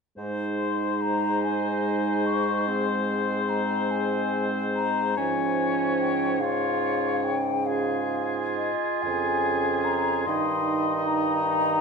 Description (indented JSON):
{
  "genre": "classical, slow romantic movement for wind quintet",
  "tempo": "48 BPM (dotted quarters)",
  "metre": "12/8",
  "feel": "rubato",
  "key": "Ab major",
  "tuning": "A4 = 439 Hz",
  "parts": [
    { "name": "warm oboe", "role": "second line", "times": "0.2-11.8 s", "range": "Ab4 to Eb5", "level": "-30 LUFS", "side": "left 2 dB", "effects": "none" },
    { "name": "bright clarinet", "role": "accompaniment", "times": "0.2-11.8 s", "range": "C4 to F4", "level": "-30 LUFS", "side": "right 9 dB", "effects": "none" },
    { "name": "warm French horn", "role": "accompaniment", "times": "0.2-11.8 s", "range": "Db3 to Ab3", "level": "-30 LUFS", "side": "equal", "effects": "none" },
    { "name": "clear bassoon", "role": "bass", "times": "0.2-11.8 s", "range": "F2 to Ab2", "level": "-31 LUFS", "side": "right 2 dB", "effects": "none" },
    { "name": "mellow hollow silver concert flute", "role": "melody", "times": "0.6-11.8 s", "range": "Eb5 to Db6", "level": "-28 LUFS", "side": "left 7 dB", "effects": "none" }
  ],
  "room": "wet recital hall reverb, RT60 1.2 s",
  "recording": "nothing above 10.5 kHz",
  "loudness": "-23 LUFS",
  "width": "side -5 dB against mid",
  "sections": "0.2-11.8 A section",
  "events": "none",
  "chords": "0.2 Ab; 5.2 Db/Ab; 10.3 Eb/G",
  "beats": "| 0.17 1.45 2.67 3.90 | 5.17 6.41 7.67 9.04 | 10.27 11.49"
}